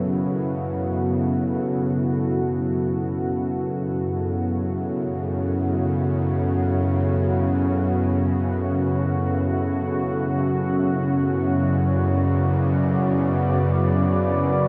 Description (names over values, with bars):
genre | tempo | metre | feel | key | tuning
dark ambient drone | free time | none | none | unclear | A4 = 440 Hz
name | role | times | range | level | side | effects
deep dark ambient pad | sustained chords | 0.0-14.7 s | B3 to D5 | -27 LUFS | equal | chorus, built-in reverb
bowed-like drone | drone | 0.0-14.7 s | F#2 to C#3 | -24 LUFS | equal | built-in reverb
bronze singing bowl | texture | 0.0-14.7 s | none | barely audible | none | none
room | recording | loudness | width
wet huge ambient reverb, RT60 7.8 s | dark, warm production | -23 LUFS | mono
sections
0.0-14.7 A section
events
filter sweep on synth drone 0.0-14.7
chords
0.0 F#m; 10.9 Bmadd9/F#